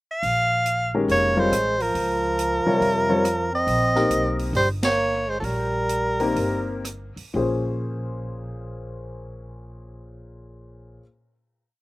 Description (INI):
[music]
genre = modal jazz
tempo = 118-140 BPM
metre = 4/4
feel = swing 65% on 8ths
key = Bb dorian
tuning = A4 = 439 Hz
[part]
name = clear soprano saxophone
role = melody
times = 0.1-6.9 s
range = A4 to F5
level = -22 LUFS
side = equal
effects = slapback echo
[part]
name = upright bass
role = bass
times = 0.2-11.0 s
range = F1 to F2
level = -30 LUFS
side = equal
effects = none
[part]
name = open jazz drum kit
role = drums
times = 0.2-7.3 s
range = hi-hat, ride cymbal, rim click, snare drum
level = -34 LUFS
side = right 2 dB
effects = none
[part]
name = warm upright piano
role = accompaniment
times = 0.9-11.0 s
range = Bb2 to Db5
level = -25 LUFS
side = left 2 dB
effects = none
[part]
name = breathy trombone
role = second line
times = 1.1-6.9 s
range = F3 to C4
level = -28 LUFS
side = right 2 dB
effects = none
[sound]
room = little or no reverb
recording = recorded outdoors, with no room sound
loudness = -20 LUFS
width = side -19 dB against mid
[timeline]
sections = 0.0-0.2 pickup bar; 0.2-7.4 A section; 7.4-11.4 final chord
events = slowing down 3.7-7.4; band accent 4.8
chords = 0.2 Bbmadd9; 3.7 Cm7; 7.4 Bbm9